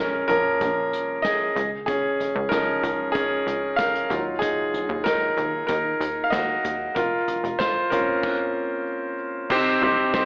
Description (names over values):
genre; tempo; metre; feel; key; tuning
piano-driven pop; 94 BPM; 4/4; straight; unclear; A4 = 440 Hz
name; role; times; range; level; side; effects
bright grand piano; accompaniment; 0.0-10.3 s; C3 to F5; -21 LUFS; equal; none
plucky analog bass; bass; 0.0-10.3 s; F1 to Eb2; -32 LUFS; equal; none
unplugged drum kit; drums; 0.3-10.3 s; crash cymbal, hi-hat, kick drum, ride cymbal, snare drum, toms; -32 LUFS; equal; none
room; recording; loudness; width
moderate plate reverb, RT60 2.7 s; AM radio sound; -21 LUFS; side -27 dB against mid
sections
0.0-9.5 A section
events
grand piano solo 0.0-9.5; stop 8.2-9.5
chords
0.0 Bbm; 1.6 Dbadd9; 4.1 Ebmadd9; 7.0 Fsus4; 9.5 Cm